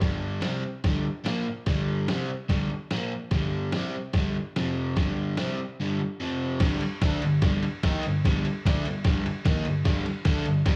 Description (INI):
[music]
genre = garage rock duo or trio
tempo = 146 BPM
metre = 4/4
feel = straight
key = G minor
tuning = A4 = 441 Hz
[part]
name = crunchy overdriven guitar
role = riff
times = 0.0-10.8 s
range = F2 to Eb4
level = -30 LUFS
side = equal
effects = slapback echo
[part]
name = lo-fi sampler-style drum kit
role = drums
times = 0.0-10.8 s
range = crash cymbal, hi-hat, kick drum, ride cymbal, snare drum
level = -28 LUFS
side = equal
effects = none
[sound]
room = little or no reverb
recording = live gig heard through the venue's PA, club reverb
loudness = -27 LUFS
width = mono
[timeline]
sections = 0.0-6.6 A section; 6.6-10.8 B section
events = none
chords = 0.0 Gm; 4.6 F5; 5.0 G5; 6.2 F5; 6.6 G5